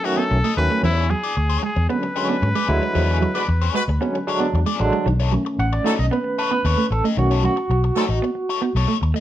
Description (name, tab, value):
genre	funk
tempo	114 BPM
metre	4/4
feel	straight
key	B mixolydian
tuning	A4 = 441 Hz
part	clear trumpet	melody	0.0-4.5 s	E4 to B4	-25 LUFS	left 1 dB	none
part	crunchy overdriven guitar	accompaniment	0.0-9.2 s	D4 to D#5	-27 LUFS	left 8 dB	wah
part	barky tine electric piano	stabs	0.1-8.7 s	D3 to F#5	-23 LUFS	right 2 dB	overdrive, medium tremolo
part	clean electric guitar	riff	0.2-9.2 s	D#3 to B3	-25 LUFS	right 4 dB	harmonic tremolo
part	vintage muted fingered electric bass	bass	0.3-9.1 s	A1 to G#2	-20 LUFS	equal	none
part	warm horn section	second line	3.3-8.0 s	F#3 to B4	-24 LUFS	equal	none
room	moderate studio reverb, RT60 0.6 s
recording	none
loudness	-18 LUFS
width	side -12 dB against mid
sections	0.0-5.1 A section; 5.1-9.2 B section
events	band accent 2.9-5.1; tine electric piano solo 5.1-9.2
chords	0.0 B9; 0.8 E13; 5.1 B9